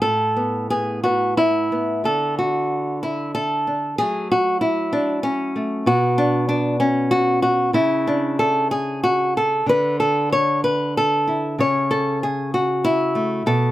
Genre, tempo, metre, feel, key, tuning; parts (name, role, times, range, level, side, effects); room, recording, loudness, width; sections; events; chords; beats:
folk, solo fingerstyle acoustic guitar; 63 BPM (dotted quarters); 6/8; rubato; A4 = 437 Hz
nylon-string guitar; solo; 0.0-13.7 s; A2 to C#5; -18 LUFS; equal
light reverb; -18 LUFS; side -15 dB against mid
0.0-2.0 A section; 2.0-13.7 B section
0.0 Asus2; 2.0 N.C.; 4.0 F#m; 5.9 N.C.; 9.7 Dsus2; 11.6 F#m/C#
| 0.02 1.04 | 2.05 3.03 | 3.99 4.93 | 5.86 6.80 | 7.75 8.70 | 9.66 10.63 | 11.58 12.51 | 13.45